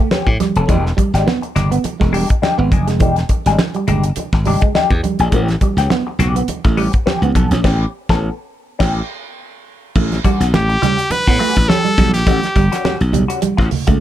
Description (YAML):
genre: funk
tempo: 104 BPM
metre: 4/4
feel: swing 56% on 16ths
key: unclear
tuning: A4 = 440 Hz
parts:
  - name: semi-hollow electric guitar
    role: accompaniment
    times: 0.0-13.9 s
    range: G3 to A4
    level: -21 LUFS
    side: left 5 dB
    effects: wah, phaser, plate reverb
  - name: electric guitar at the edge of break-up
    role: riff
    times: 0.0-14.0 s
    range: E3 to C#4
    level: -21 LUFS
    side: right 5 dB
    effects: none
  - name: damped 70s drum kit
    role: drums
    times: 0.1-14.0 s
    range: crash cymbal, hi-hat, kick drum, snare drum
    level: -18 LUFS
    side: equal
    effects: none
  - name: congas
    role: percussion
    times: 0.1-13.9 s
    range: none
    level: -24 LUFS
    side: right 6 dB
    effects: none
  - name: glassy slap bass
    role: bass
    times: 0.3-14.0 s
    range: E1 to A2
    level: -16 LUFS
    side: equal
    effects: none
  - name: brilliant trumpet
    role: melody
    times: 10.5-13.0 s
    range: G4 to B4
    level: -18 LUFS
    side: equal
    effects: plate reverb
room: little or no reverb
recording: dark, warm production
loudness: -13 LUFS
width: side -12 dB against mid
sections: 0.0-10.0 A section; 10.0-14.0 B section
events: band accent 7.6-10.0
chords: 0.0 A9; 0.7 E7#9; 5.3 A9; 10.0 A13